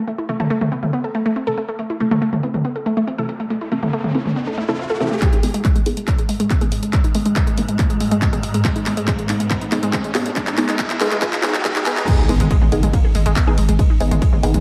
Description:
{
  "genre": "driving peak-time techno",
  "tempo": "140 BPM",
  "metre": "4/4",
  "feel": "straight",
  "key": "G# minor",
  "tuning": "A4 = 441 Hz",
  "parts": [
    { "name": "analog pluck", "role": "riff", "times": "0.0-14.6 s", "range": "G#3 to A4", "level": "-25 LUFS", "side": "equal", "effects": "chorus, sidechain pumping, tape echo" },
    { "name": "techno drum kit", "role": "drums", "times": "0.1-14.6 s", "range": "crash cymbal, handclaps, hi-hat, ride cymbal, toms", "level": "-27 LUFS", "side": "equal", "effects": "sidechain pumping on hats, low-pass filter on hats, sidechain pumping on toms, low-pass filter on toms, low-pass filter on snare, sidechain pumping on cymbals, low-pass filter on cymbals, low-pass filter on room" },
    { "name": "filtered dub chord stab", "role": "stabs", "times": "0.3-14.6 s", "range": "B3 to A4", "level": "-27 LUFS", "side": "equal", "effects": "phaser, ensemble chorus, sidechain pumping, analog delay" },
    { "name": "riser and impact", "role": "sound effects", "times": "2.9-13.8 s", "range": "none", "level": "-30 LUFS", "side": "equal", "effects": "none" },
    { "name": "swarming drone", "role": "drone", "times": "6.3-12.1 s", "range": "G#2 to G#3", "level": "-28 LUFS", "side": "equal", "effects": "built-in reverb, sidechain pumping" },
    { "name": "electronic kick drum", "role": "drums", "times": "5.2-14.3 s", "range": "none", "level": "-20 LUFS", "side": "equal", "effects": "none" },
    { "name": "growling 808-style bass", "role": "bass", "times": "12.3-14.6 s", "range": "G#1", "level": "-22 LUFS", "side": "equal", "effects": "tube saturation, sidechain pumping, low-pass filter" }
  ],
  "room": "moderate plate reverb, RT60 1.3 s, digital ambience",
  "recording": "dreamy mix soaked in reverb, high-pass filter",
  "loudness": "-19 LUFS",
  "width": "mono",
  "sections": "0.0-5.2 A section; 5.2-12.1 B section; 12.1-14.6 C section",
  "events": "riser 2.9-5.2, 5.2-12.1; build-up 5.2-12.1; drum fill 5.2-12.1; filter sweep on synth arpeggio sound 5.2-12.1; filter sweep on synth stab 5.2-12.1; filter sweep 5.2-12.1; drop 12.1-14.6; impact 12.1-13.8",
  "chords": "0.0 Am; 5.2 G#m",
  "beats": "| 0.08 0.51 0.93 1.36 | 1.79 2.22 2.65 3.08 | 3.50 3.93 4.36 4.79 | 5.22 5.65 6.08 6.50 | 6.93 7.36 7.79 8.22 | 8.65 9.08 9.51 9.93 | 10.36 10.79 11.22 11.65 | 12.08 12.51 12.93 13.36 | 13.79 14.22"
}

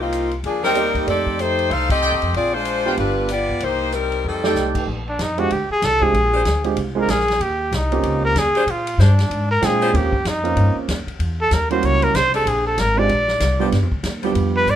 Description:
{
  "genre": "jazz, big band swing",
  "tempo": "190 BPM",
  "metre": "4/4",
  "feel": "swing 61% on 8ths",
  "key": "Bb mixolydian",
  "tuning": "A4 = 438 Hz",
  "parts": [
    { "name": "clear saxophone section", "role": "melody", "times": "0.0-4.7 s", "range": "F3 to F5", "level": "-20 LUFS", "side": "left 3 dB", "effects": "none" },
    { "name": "upright bass", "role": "bass", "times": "0.0-14.8 s", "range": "G1 to Bb2", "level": "-22 LUFS", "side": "equal", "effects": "none" },
    { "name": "vintage drum kit", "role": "drums", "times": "0.1-14.8 s", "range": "crash cymbal, hi-hat, kick drum, ride cymbal, snare drum", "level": "-29 LUFS", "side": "equal", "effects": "none" },
    { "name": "clear trumpet section", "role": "stabs", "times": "0.6-4.8 s", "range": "Eb4 to G5", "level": "-25 LUFS", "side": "right 4 dB", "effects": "none" },
    { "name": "warm concert grand piano", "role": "accompaniment", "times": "0.7-14.7 s", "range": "G3 to G5", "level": "-23 LUFS", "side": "right 6 dB", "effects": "none" },
    { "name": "breathy trumpet", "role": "melody", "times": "5.1-14.8 s", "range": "D4 to D5", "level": "-19 LUFS", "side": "equal", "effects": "none" },
    { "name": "clear saxophone section", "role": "sustained chords", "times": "6.3-9.9, 12.3-14.3 s", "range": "F3 to C5", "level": "-26 LUFS", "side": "left 2 dB", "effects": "none" }
  ],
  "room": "light reverb",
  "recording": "minimal, uncompressed stereo recording",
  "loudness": "-16 LUFS",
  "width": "side -10 dB against mid",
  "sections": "0.0-4.9 A section; 4.9-14.8 B section",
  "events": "band accent 1.9; drum fill 4.2-4.6; trumpet solo 4.9-14.8",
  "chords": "0.0 Cm7; 1.1 F13; 2.3 Bb13; 3.0 G7; 3.6 Cm7; 4.2 F13; 4.9 Bb13; 7.4 Eb13; 8.7 Bb13; 9.9 Eb13; 11.2 Edim7; 12.5 Bb13; 13.7 G7",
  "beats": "0.12 0.44 0.76 | 1.07 1.39 1.71 2.02 | 2.34 2.66 2.97 3.29 | 3.61 3.92 4.24 4.56 | 4.87 5.19 5.51 5.82 | 6.14 6.46 6.77 7.09 | 7.41 7.72 8.04 8.35 | 8.67 8.99 9.30 9.62 | 9.94 10.25 10.57 10.88 | 11.20 11.52 11.83 12.15 | 12.46 12.78 13.10 13.41 | 13.73 14.04 14.36 14.68"
}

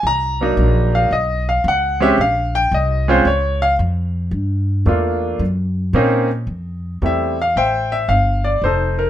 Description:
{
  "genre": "jazz piano trio",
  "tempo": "112 BPM",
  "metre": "4/4",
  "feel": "swing 68% on 8ths",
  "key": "unclear",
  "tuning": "A4 = 441 Hz",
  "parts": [
    { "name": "clear baby grand piano", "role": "melody", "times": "0.0-9.1 s", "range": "Gb3 to Bb5", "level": "-16 LUFS", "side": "equal", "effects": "none" },
    { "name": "upright bass", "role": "bass", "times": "0.0-9.1 s", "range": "F1 to Bb2", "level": "-19 LUFS", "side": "equal", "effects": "none" }
  ],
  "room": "light reverb",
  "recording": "minimal, uncompressed stereo recording",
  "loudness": "-15 LUFS",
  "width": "side -11 dB against mid",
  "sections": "0.0-6.5 A section; 6.5-9.1 B section",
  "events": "grand piano solo 0.0-6.5",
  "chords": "0.0 Cm7b5; 1.1 Bsus2; 2.2 Bbmadd9; 4.3 Gm9; 5.4 Gb; 6.5 Fmaj9",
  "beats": "| 0.04 0.57 1.11 1.65 | 2.19 2.72 3.26 3.80 | 4.33 4.87 5.41 5.94 | 6.48 7.02 7.56 8.10 | 8.63"
}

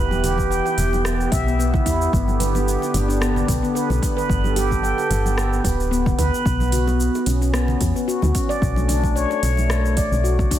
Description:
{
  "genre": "organic downtempo",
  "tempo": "111 BPM",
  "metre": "4/4",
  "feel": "swing 54% on 16ths",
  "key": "B minor",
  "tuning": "A4 = 439 Hz",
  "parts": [
    { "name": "warm analog pad", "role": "sustained chords", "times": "0.0-10.6 s", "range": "D3 to A4", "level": "-27 LUFS", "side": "right 2 dB", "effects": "chorus, sidechain pumping" },
    { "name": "woody FM bass", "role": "bass", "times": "0.0-10.6 s", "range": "D1 to E2", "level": "-21 LUFS", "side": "equal", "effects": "sidechain pumping" },
    { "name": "handpan", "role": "arpeggios", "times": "0.1-10.6 s", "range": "B3 to G5", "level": "-23 LUFS", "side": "left 1 dB", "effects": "tape echo" },
    { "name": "organic electronic drum kit", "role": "drums", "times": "0.1-10.6 s", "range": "cabasa, hi-hat, rim click", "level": "-30 LUFS", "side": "right 1 dB", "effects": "soft clipping on snare" },
    { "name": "congas and bongos", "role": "percussion", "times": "0.1-10.5 s", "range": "none", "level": "-32 LUFS", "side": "right 1 dB", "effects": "none" },
    { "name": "electronic kick drum", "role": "drums", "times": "0.4-10.6 s", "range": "none", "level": "-23 LUFS", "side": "equal", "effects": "overdrive" }
  ],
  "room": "light reverb, digital ambience",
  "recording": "dense, heavily limited modern master",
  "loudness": "-18 LUFS",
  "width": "side -12 dB against mid",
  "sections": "0.0-10.6 A section",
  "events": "none",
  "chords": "0.0 Em; 2.1 G; 6.5 Bmadd9",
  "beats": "0.51 1.05 1.59 | 2.13 2.67 3.21 3.75 | 4.29 4.83 5.37 5.91 | 6.46 7.00 7.54 8.08 | 8.62 9.16 9.70 10.24"
}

